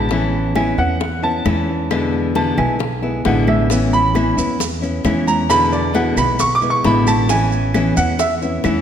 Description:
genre	latin, Cuban son and guajira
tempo	134 BPM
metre	4/4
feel	straight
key	A major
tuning	A4 = 439 Hz
part	nylon-string guitar	accompaniment	0.0-8.8 s	B2 to E4	-19 LUFS	left 2 dB	none
part	bright baby grand piano	arpeggios	0.0-8.3 s	D5 to D6	-19 LUFS	right 2 dB	none
part	upright bass	bass	0.0-8.8 s	A1 to E2	-21 LUFS	right 1 dB	none
part	bongos	percussion	0.1-8.8 s	none	-28 LUFS	left 6 dB	none
part	congas	percussion	0.1-8.8 s	none	-26 LUFS	equal	none
part	claves	percussion	0.6-8.8 s	none	-32 LUFS	right 4 dB	none
part	maracas	percussion	3.7-8.8 s	none	-29 LUFS	right 7 dB	none
room	moderate concert hall reverb, RT60 1.8 s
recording	none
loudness	-14 LUFS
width	side -9 dB against mid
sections	0.0-8.8 A section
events	grand piano solo 0.0-8.8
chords	0.1 Aadd9; 1.9 E7; 3.7 Aadd9; 5.5 E7; 7.3 Aadd9

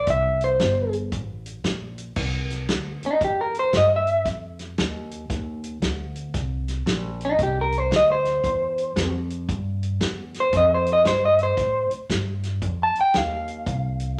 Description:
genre	electric blues shuffle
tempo	115 BPM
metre	4/4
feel	swing 64% on 8ths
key	unclear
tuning	A4 = 439 Hz
part	electric guitar through a small old amp	melody	0.0-14.2 s	Eb4 to A5	-22 LUFS	equal	none
part	upright bass	bass	0.0-14.2 s	G1 to A2	-30 LUFS	equal	none
part	natural country drum kit	drums	0.1-14.1 s	crash cymbal, hi-hat, kick drum, snare drum	-31 LUFS	equal	none
room	moderate large studio reverb, RT60 0.9 s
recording	none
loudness	-23 LUFS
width	mono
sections	0.0-2.2 A section; 2.2-14.2 B section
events	clean electric guitar solo 2.2-14.2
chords	0.0 C5; 2.2 Cadd9; 4.3 Dm; 6.3 C9; 10.5 F9

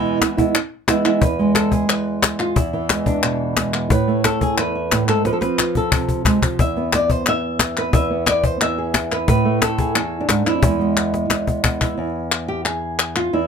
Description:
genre	flamenco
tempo	178 BPM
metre	4/4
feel	straight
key	E phrygian dominant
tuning	A4 = 440 Hz
part	flamenco guitar	melody	0.0-13.5 s	E2 to E5	-18 LUFS	right 2 dB	none
part	cajon	percussion	0.1-11.9 s	none	-20 LUFS	left 3 dB	none
part	palmas hand claps	percussion	0.2-13.3 s	none	-20 LUFS	left 5 dB	none
room	little or no reverb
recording	close, detailed microphones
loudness	-16 LUFS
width	side -6 dB against mid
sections	0.0-1.2 A section; 1.2-12.0 B section; 12.0-13.5 C section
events	drum fill 5.2-6.6, 11.0-12.0; nylon-string guitar solo 12.0-13.5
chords	0.0 E; 3.9 A5; 5.2 F; 6.6 E5; 9.3 A5; 10.6 E

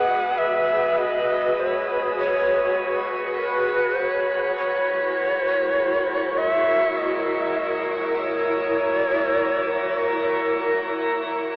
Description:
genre	ambient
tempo	50 BPM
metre	3/4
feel	straight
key	unclear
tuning	A4 = 440 Hz
part	breathy long shakuhachi	melody	0.0-10.5 s	B4 to F#5	-21 LUFS	equal	diffuse ambient delay
part	granular cloud pad	sustained chords	0.0-11.6 s	E4 to B4	-24 LUFS	equal	built-in reverb
part	warm sub bass	bass	0.0-11.6 s	C#2	-50 LUFS	equal	tube saturation
room	wet shimmer reverb, RT60 9.1 s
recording	telephone sound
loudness	-20 LUFS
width	side -29 dB against mid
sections	0.0-11.6 A section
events	none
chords	0.0 G#m7/C#; 4.6 F#7/C#

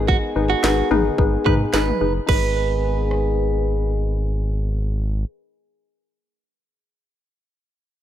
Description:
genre	synth-pop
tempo	109 BPM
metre	4/4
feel	straight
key	G# minor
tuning	A4 = 439 Hz
part	warbly dusty pluck	accompaniment	0.0-5.7 s	D#4 to B4	-23 LUFS	left 5 dB	chorus, low-pass filter
part	mellow French horn section	sustained chords	0.0-5.2 s	D#3 to G#4	-26 LUFS	left 4 dB	low-pass filter
part	round analog bass	bass	0.0-5.2 s	F#1 to G#2	-22 LUFS	equal	none
part	direct-recorded clean electric guitar	second line	0.1-3.9 s	F#4 to B4	-24 LUFS	right 11 dB	analog delay
part	house drum kit	drums	0.1-3.2 s	crash cymbal, kick drum, rim click, snare drum, toms	-22 LUFS	equal	none
room	light reverb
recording	none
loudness	-18 LUFS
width	side -11 dB against mid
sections	0.0-2.3 A section; 2.3-4.5 B section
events	filter sweep 0.0-2.3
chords	0.0 G#m

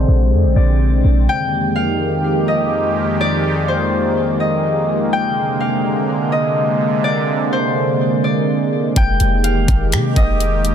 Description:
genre	hip hop, atmospheric cloud-rap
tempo	125 BPM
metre	4/4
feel	half-time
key	F dorian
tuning	A4 = 442 Hz
part	Celtic harp	melody	0.0-10.7 s	C5 to G5	-20 LUFS	left 2 dB	ping-pong delay
part	sweeping resonant pad	sustained chords	0.0-10.7 s	F2 to G4	-18 LUFS	right 1 dB	chorus
part	clean 808-style bass	bass	0.0-1.3, 9.0-10.7 s	F1 to C3	-15 LUFS	equal	none
part	trap drum kit	drums	9.0-10.7 s	finger snaps, hi-hat, kick drum	-18 LUFS	equal	none
room	light reverb, digital ambience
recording	low-pass filter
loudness	-14 LUFS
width	side -8 dB against mid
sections	0.0-1.3 A section; 1.3-10.7 B section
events	filter sweep 0.0-1.3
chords	0.0 Bb9; 1.3 Fm11; 5.1 Bb9; 9.0 Fm11

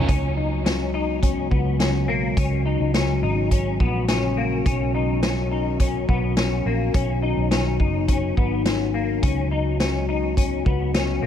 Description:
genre	dream pop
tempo	105 BPM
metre	4/4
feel	straight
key	unclear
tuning	A4 = 436 Hz
part	warbly tape-like pad	sustained chords	0.0-11.3 s	Db3 to Gb4	-26 LUFS	left 2 dB	chorus, built-in reverb
part	semi-hollow electric guitar	arpeggios	0.0-11.3 s	Bb3 to Eb4	-27 LUFS	left 4 dB	ensemble chorus, digital delay
part	fingered electric bass	bass	0.0-11.3 s	Gb1 to Db2	-25 LUFS	equal	none
part	vintage drum kit	drums	0.1-11.1 s	hi-hat, kick drum, snare drum	-23 LUFS	equal	none
room	light reverb, studio ambience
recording	none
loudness	-19 LUFS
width	side -9 dB against mid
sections	0.1-11.3 A section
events	none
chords	0.1 Db7sus4; 4.7 Cbadd9; 9.2 Db7sus4

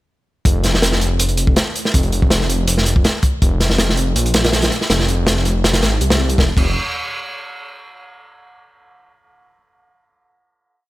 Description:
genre	drum and bass, jungle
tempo	162 BPM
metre	4/4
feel	straight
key	F minor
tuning	A4 = 440 Hz
part	detuned saw bass	bass	0.5-6.7 s	F1 to C2	-18 LUFS	equal	none
part	crunchy breakbeat drum kit	drums	0.5-6.6 s	crash cymbal, hi-hat, kick drum, snare drum	-16 LUFS	equal	none
room	little or no reverb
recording	none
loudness	-14 LUFS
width	side -17 dB against mid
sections	0.5-6.4 drop; 6.4-7.9 final note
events	drop 0.5-6.4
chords	none

